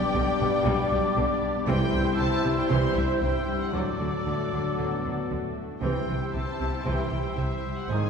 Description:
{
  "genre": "cinematic",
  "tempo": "116 BPM",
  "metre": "4/4",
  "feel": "straight",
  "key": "C lydian",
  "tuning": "A4 = 441 Hz",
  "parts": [
    { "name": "warm symphonic violin section", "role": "melody", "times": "0.0-8.1 s", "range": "D5 to C6", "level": "-36 LUFS", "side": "left 2 dB", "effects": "none" },
    { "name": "bright clarinet", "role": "second line", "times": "0.0-8.1 s", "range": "Eb4 to G4", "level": "-38 LUFS", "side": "left 7 dB", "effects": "none" },
    { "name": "rich symphonic violin section", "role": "second line", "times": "0.0-8.1 s", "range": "F#4 to D5", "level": "-38 LUFS", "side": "equal", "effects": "none" },
    { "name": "silver concert flute", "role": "second line", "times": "0.0-8.1 s", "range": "D6 to E6", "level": "-38 LUFS", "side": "left 2 dB", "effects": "none" },
    { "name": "warm oboe", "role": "second line", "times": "0.0-8.1 s", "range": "A4 to D5", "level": "-37 LUFS", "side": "equal", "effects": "none" },
    { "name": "dark symphonic viola section", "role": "accompaniment", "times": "0.0-8.1 s", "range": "C3 to E4", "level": "-35 LUFS", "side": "equal", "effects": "none" },
    { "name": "clear trombone section", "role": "sustained chords", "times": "0.0-8.1 s", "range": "G2 to Ab3", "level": "-34 LUFS", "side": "right 1 dB", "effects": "none" },
    { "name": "warm French horn section", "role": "sustained chords", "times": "0.0-8.1 s", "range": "G3 to E4", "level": "-34 LUFS", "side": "left 3 dB", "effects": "none" },
    { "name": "concert harp", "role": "arpeggios", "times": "0.0-8.1 s", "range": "Ab2 to A5", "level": "-35 LUFS", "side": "left 6 dB", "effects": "none" },
    { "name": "dark trumpet", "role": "stabs", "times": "0.0-8.1 s", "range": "C5 to D5", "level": "-32 LUFS", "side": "equal", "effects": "none" },
    { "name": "rich symphonic cello section", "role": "bass", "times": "0.1-8.0 s", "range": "Ab2 to D3", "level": "-32 LUFS", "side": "right 2 dB", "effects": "none" },
    { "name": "rich symphonic double bass section", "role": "bass", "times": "0.1-8.0 s", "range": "Ab1 to D2", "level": "-32 LUFS", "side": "right 1 dB", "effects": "none" },
    { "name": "timpani", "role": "percussion", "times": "1.7-2.4 s", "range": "C3", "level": "-32 LUFS", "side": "equal", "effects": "none" }
  ],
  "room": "wet scoring stage reverb, RT60 1.6 s",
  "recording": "heard from further back in the room",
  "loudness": "-24 LUFS",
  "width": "side -6 dB against mid",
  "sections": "0.0-8.1 A section",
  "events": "none",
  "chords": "0.0 G/B; 1.7 C; 3.7 D; 5.8 C"
}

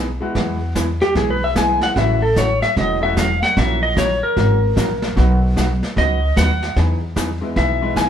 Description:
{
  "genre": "country, western swing",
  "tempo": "150 BPM",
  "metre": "4/4",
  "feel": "swing 64% on 8ths",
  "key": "E major",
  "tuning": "A4 = 445 Hz",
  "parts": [
    { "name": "hollow-body jazz guitar", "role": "accompaniment", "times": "0.0-8.1 s", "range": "B2 to A#4", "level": "-25 LUFS", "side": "right 3 dB", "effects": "none" },
    { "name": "upright bass", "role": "bass", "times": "0.0-8.1 s", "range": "E1 to E2", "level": "-19 LUFS", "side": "equal", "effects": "none" },
    { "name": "bright upright piano", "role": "accompaniment", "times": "0.2-8.0 s", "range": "D#3 to G#4", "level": "-27 LUFS", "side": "left 2 dB", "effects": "none" },
    { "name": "vintage brush drum kit", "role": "drums", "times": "0.4-8.1 s", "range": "brushed snare drum, hi-hat, kick drum, snare drum", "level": "-24 LUFS", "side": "left 1 dB", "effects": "none" },
    { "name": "clean lap steel guitar", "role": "melody", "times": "1.0-8.1 s", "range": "G4 to G#5", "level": "-18 LUFS", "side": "left 1 dB", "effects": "none" }
  ],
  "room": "moderate studio reverb, RT60 1.0 s",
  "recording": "band playing live in one room",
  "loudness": "-15 LUFS",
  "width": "side -9 dB against mid",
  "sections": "0.4-8.1 A section",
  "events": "electric slide guitar solo 0.4-8.1",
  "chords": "0.4 E; 2.0 A6; 3.6 F#7/A#; 5.2 B; 6.8 Emaj7"
}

